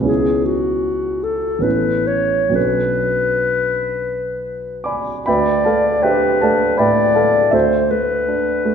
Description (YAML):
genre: classical, impressionist duo for clarinet and grand piano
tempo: 63-81 BPM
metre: 3/4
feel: rubato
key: B dorian, D dorian from 5.3 s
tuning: A4 = 440 Hz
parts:
  - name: warm grand piano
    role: accompaniment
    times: 0.0-8.7 s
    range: A1 to D6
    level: -18 LUFS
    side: right 2 dB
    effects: none
  - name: dark clarinet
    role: melody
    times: 0.1-8.7 s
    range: F#4 to D5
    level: -17 LUFS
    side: left 3 dB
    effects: none
room: wet scoring stage reverb, RT60 1.6 s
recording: none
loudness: -15 LUFS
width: side -7 dB against mid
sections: 0.0-5.3 A section; 5.3-8.7 B section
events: none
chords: 0.1 C#m7; 1.6 Aadd9; 2.6 Bm9; 5.3 Dm6; 7.5 C69/D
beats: | 0.08 0.83 1.65 | 2.56 3.48 4.40 | 5.27 6.04 6.79 | 7.54 8.28